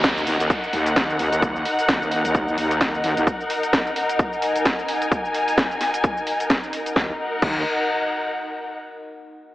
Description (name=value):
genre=bass house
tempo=130 BPM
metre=4/4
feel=swing 58% on 16ths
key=Eb minor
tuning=A4 = 439 Hz
part: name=deep dark ambient pad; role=sustained chords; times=0.0-7.2 s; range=Eb4 to Gb5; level=-32 LUFS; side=equal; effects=chorus, built-in reverb, sidechain pumping
part: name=wobble bass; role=bass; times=0.0-3.3, 7.0-7.6 s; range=Eb2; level=-24 LUFS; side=equal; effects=chorus, overdrive, sidechain pumping
part: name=electronic kick drum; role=drums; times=0.0-7.5 s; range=none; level=-22 LUFS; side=equal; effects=overdrive
part: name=house drum kit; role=drums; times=0.0-7.5 s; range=crash cymbal, hi-hat, shaker, snare drum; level=-25 LUFS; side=equal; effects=overdrive
part: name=downlifter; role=sound effects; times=0.0-3.3 s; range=none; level=-31 LUFS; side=right 1 dB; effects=none
part: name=dark symphonic string section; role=texture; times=0.0-8.8 s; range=Eb4 to Ab5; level=-24 LUFS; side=left 1 dB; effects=sidechain pumping
room=moderate lush hall reverb, RT60 1.9 s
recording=AM radio sound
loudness=-19 LUFS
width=side -16 dB against mid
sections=0.0-7.0 A section; 7.0-8.8 B section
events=none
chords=0.0 Ebm